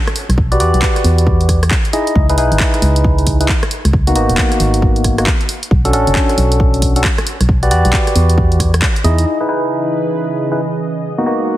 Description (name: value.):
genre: UK garage, two-step garage.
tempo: 135 BPM.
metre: 4/4.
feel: swing 63% on 16ths.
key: C# minor.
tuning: A4 = 440 Hz.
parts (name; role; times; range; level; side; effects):
punchy analog drum machine; drums; 0.1-9.2 s; handclaps, hi-hat, rim click; -20 LUFS; equal; low-pass filter on hats, low-pass filter on snare.
organ-like FM bass; bass; 0.3-9.2 s; D#1 to E2; -13 LUFS; equal; none.
electronic kick drum; drums; 0.4-8.9 s; none; -16 LUFS; equal; none.
tine electric piano; stabs; 0.5-11.6 s; A#3 to D#5; -17 LUFS; equal; phaser, low-pass filter, tape echo.
warm analog pad; sustained chords; 9.3-11.6 s; C#3 to F#5; -21 LUFS; right 2 dB; chorus, sidechain pumping.
room: light reverb.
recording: heavily compressed radio sound, multiband compression.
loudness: -11 LUFS.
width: side -14 dB against mid.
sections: 0.0-9.3 A section; 9.3-11.6 B section.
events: none.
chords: 0.4 Em9; 2.2 C#m9; 3.9 G#m9; 5.5 Bm9; 7.5 Em9; 9.3 C#m9; 11.0 G#m9.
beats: | 0.38 0.82 1.27 1.71 | 2.15 2.60 3.04 3.49 | 3.93 4.38 4.82 5.27 | 5.71 6.16 6.60 7.04 | 7.49 7.93 8.38 8.82 | 9.27 9.71 10.15 10.60 | 11.04 11.49.